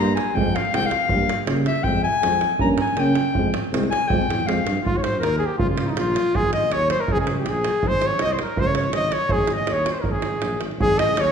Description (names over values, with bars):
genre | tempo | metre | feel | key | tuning
balkan folk, Balkan brass band | 161 BPM | 2/4 | straight | F harmonic minor, Ab major from 4.8 s | A4 = 440 Hz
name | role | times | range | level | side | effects
clear clarinet | second line | 0.0-11.3 s | Eb4 to Bb5 | -25 LUFS | left 4 dB | none
dark euphonium | accompaniment | 0.0-4.6 s | G3 to Bb3 | -28 LUFS | right 2 dB | none
mellow euphonium | accompaniment | 0.0-4.6 s | Bb3 to Db4 | -27 LUFS | equal | none
mellow tuba | bass | 0.0-11.3 s | Ab1 to Db3 | -26 LUFS | right 1 dB | none
davul | percussion | 0.1-11.3 s | none | -25 LUFS | right 2 dB | none
clear flugelhorn | melody | 4.9-11.3 s | Eb4 to Eb5 | -22 LUFS | equal | none
room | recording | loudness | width
wet recital hall reverb, RT60 1.7 s | recorded in a church or concert hall | -19 LUFS | side -7 dB against mid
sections
0.0-4.8 A section; 4.8-10.8 B section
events
clarinet solo 0.0-4.8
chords
0.3 Fm; 1.1 Gdim; 1.8 Fm; 2.6 Gdim; 3.3 Fm; 4.8 Ab5; 5.6 Db; 6.3 Ab5; 7.1 Db5; 7.8 Ab; 8.6 Db5; 9.3 Ab5; 10.1 Absus2; 10.8 Ab5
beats
| 0.35 0.72 | 1.10 1.48 | 1.85 2.22 | 2.60 2.97 | 3.35 3.72 | 4.09 4.47 | 4.84 5.21 | 5.59 5.96 | 6.33 6.71 | 7.08 7.45 | 7.82 8.19 | 8.57 8.94 | 9.31 9.68 | 10.05 10.42 | 10.79 11.16